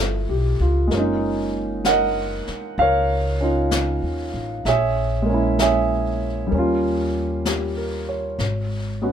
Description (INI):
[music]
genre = jazz ballad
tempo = 64 BPM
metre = 4/4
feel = swing 67% on 8ths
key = unclear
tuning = A4 = 440 Hz
[part]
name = warm concert grand piano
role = accompaniment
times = 0.0-9.1 s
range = F3 to Gb5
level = -21 LUFS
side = right 2 dB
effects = none
[part]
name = upright bass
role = bass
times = 0.0-9.1 s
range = Gb1 to Eb2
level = -24 LUFS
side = equal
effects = none
[part]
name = jazz brush drum kit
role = drums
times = 0.9-9.1 s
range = brushed snare drum, hi-hat, snare drum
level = -29 LUFS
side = left 4 dB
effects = none
[sound]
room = light reverb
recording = minimal, uncompressed stereo recording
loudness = -19 LUFS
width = side -8 dB against mid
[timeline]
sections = 0.0-9.1 A section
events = none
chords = 0.0 G13; 0.9 Gb6; 4.7 Bbm7b5; 6.5 Eb7; 8.4 Abmadd11